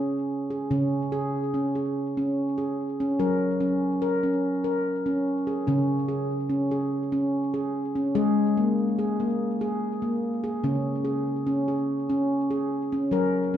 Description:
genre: world meditative, meditative tuned percussion.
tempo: 72 BPM.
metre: 3/4.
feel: straight.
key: unclear.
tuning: A4 = 441 Hz.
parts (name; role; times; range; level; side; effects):
handpan; solo; 0.0-13.6 s; C#3 to A#4; -24 LUFS; equal; ping-pong delay.
room: wet recital hall reverb, RT60 1.6 s.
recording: dark, warm production.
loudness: -24 LUFS.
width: side -10 dB against mid.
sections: 0.7-13.6 A section.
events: none.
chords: 0.0 C#5; 3.2 F#; 5.7 C#5; 8.2 G#sus2; 10.6 C#5.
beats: | 0.71 1.53 2.36 | 3.19 4.01 4.84 | 5.67 6.50 7.32 | 8.15 8.98 9.81 | 10.64 11.46 12.29 | 13.12.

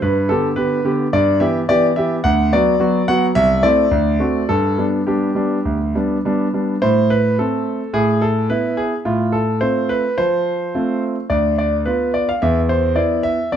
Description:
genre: classical-period piano sonatina.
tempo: 107 BPM.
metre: 4/4.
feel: straight.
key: G major, A minor from 6.8 s.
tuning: A4 = 440 Hz.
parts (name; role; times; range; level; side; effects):
clear concert grand piano; solo; 0.0-13.6 s; C2 to F#5; -15 LUFS; equal; none.
room: moderate large studio reverb, RT60 1.5 s.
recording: minimal, uncompressed stereo recording.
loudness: -15 LUFS.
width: side -9 dB against mid.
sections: 0.0-6.8 A section; 6.8-13.6 B section.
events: none.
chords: 0.0 G; 1.1 Em/G; 2.3 Bm/D; 3.4 Am/C; 3.9 D7; 4.5 G; 6.8 Am; 7.9 E5/A; 9.1 F/A; 11.3 Bdim/D; 12.4 E5.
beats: | 0.03 0.58 1.14 1.70 | 2.25 2.81 3.36 3.92 | 4.51 5.09 5.67 6.24 | 6.82 7.38 7.95 8.50 | 9.06 9.63 10.19 10.75 | 11.31 11.87 12.43 12.98 | 13.54.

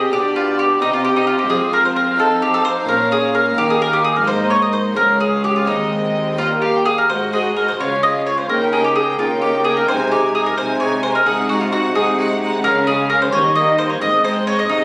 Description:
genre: classical, baroque-style concerto movement with solo episodes.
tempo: 87 BPM (dotted quarters).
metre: 6/8.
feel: straight.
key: Ab major.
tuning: A4 = 440 Hz.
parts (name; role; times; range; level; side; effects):
clear chamber violin section; melody; 0.0-14.8 s; D5 to Ab5; -30 LUFS; equal; none.
mandolin; melody; 0.0-14.8 s; Eb4 to Eb5; -19 LUFS; equal; none.
warm studio violin section; second line; 0.0-14.8 s; Bb3 to G4; -27 LUFS; equal; none.
harpsichord; accompaniment; 0.0-14.8 s; Db2 to Ab4; -29 LUFS; equal; none.
rich chamber viola section; accompaniment; 0.0-14.8 s; G3 to D4; -27 LUFS; equal; none.
rich chamber cello section; bass; 0.0-14.8 s; Db2 to Eb3; -27 LUFS; equal; none.
room: moderate recital hall reverb, RT60 1.3 s.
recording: recorded on a phone in the room, club reverb, vinyl crackle.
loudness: -17 LUFS.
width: mono.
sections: 0.0-7.1 A section; 7.1-14.8 A section.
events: none.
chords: 0.1 G/B; 0.8 Cm; 1.5 Fm; 2.2 F5; 2.9 Bbm; 3.6 Eb5; 4.3 Ab5; 5.0 Db; 5.7 Ab/Eb; 6.4 Eb; 7.1 Ab5; 7.8 Db; 8.5 Eb7/Db; 9.9 Ab/C; 11.3 Ab7/C; 12.6 Db; 13.3 Eb; 14.0 Ab.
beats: | 0.13 0.82 | 1.51 2.19 | 2.88 3.57 | 4.26 4.96 | 5.67 6.38 | 7.09 7.80 | 8.50 9.19 | 9.88 10.57 | 11.26 11.95 | 12.64 13.32 | 14.02 14.70.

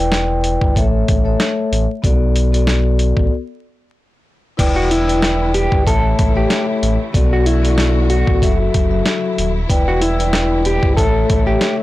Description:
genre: hip hop, boom-bap hip-hop.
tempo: 94 BPM.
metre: 4/4.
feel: swing 56% on 16ths.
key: E dorian.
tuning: A4 = 441 Hz.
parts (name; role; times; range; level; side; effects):
vibraphone with soft mallets; accompaniment; 0.0-11.8 s; F#3 to G5; -19 LUFS; left 3 dB; plate reverb.
sub bass with octave; bass; 0.0-11.6 s; D#1 to B1; -17 LUFS; equal; transformer saturation.
boom bap sampler-style drum kit; drums; 0.1-11.8 s; crash cymbal, hi-hat, kick drum, snare drum; -18 LUFS; equal; none.
warm studio string section; sustained chords; 4.6-11.8 s; C#3 to F#4; -29 LUFS; left 1 dB; plate reverb.
mellow electric guitar; melody; 4.8-11.8 s; E4 to A4; -20 LUFS; equal; harmonic tremolo, plate reverb, ping-pong delay.
room: light reverb.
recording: blown-out, overdriven recording, vinyl crackle, overdrive.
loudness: -13 LUFS.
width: side -16 dB against mid.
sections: 0.0-4.6 A section; 4.6-11.8 B section.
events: break 3.3-4.6.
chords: 0.0 Em7; 0.8 A; 2.0 Bm7; 3.3 N.C.; 4.6 Em7; 5.9 A; 7.1 Bm7; 8.4 F#m7; 9.7 Em7; 11.0 A.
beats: 0.12 0.76 1.40 | 2.04 2.68 3.31 3.95 | 4.59 5.23 5.87 6.50 | 7.14 7.78 8.42 9.06 | 9.70 10.34 10.97 11.61.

